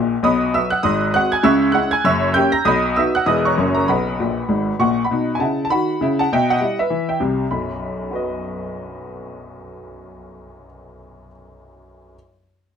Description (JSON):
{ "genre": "jazz, stride piano", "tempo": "198 BPM", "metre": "4/4", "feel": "swing 59% on 8ths", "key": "B major", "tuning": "A4 = 440 Hz", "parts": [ { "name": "clear upright piano", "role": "solo", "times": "0.0-12.2 s", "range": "E1 to A#6", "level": "-16 LUFS", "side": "equal", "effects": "none" } ], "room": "moderate club reverb, RT60 0.6 s", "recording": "none", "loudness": "-16 LUFS", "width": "side -7 dB against mid", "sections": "0.0-5.1 A section; 5.1-7.5 B section; 7.5-9.9 C section", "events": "upright piano fill 0.0, 4.2-5.1", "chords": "0.2 B; 0.8 G#7; 1.4 C#m; 2.0 F#7b9; 2.7 B; 3.3 Emaj7; 3.6 F#; 3.9 B5; 5.1 B; 6.3 Em/B; 7.5 B", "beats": "| 0.23 0.53 0.84 1.14 | 1.44 1.75 2.05 2.35 | 2.65 2.96 3.26 3.56 | 3.87 4.17 4.47 4.77 | 5.08 5.38 5.68 5.99 | 6.29 6.59 6.89 7.20 | 7.50 7.80 8.11 8.41 | 8.71 9.02 9.32 9.63" }